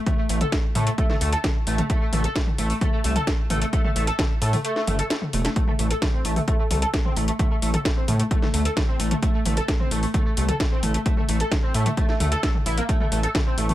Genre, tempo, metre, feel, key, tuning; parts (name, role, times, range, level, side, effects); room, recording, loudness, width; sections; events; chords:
driving peak-time techno; 131 BPM; 4/4; straight; A minor; A4 = 439 Hz
overdriven synth lead; riff; 0.1-13.7 s; A3 to A4; -27 LUFS; equal; distortion, tube saturation, ensemble chorus, cassette tape, sidechain pumping, tape echo
electronic kick drum; drums; 0.1-13.4 s; -23 LUFS; equal
techno drum kit; drums; 0.1-13.7 s; hi-hat, snare drum, toms; -27 LUFS; left 1 dB
gritty driven synth bass; bass; 0.3-13.7 s; E1 to A2; -23 LUFS; equal; sidechain pumping
light reverb, digital ambience; -20 LUFS; side -14 dB against mid
0.0-13.7 A section
kick drops out 4.6-5.6; drum fill 5.1-5.6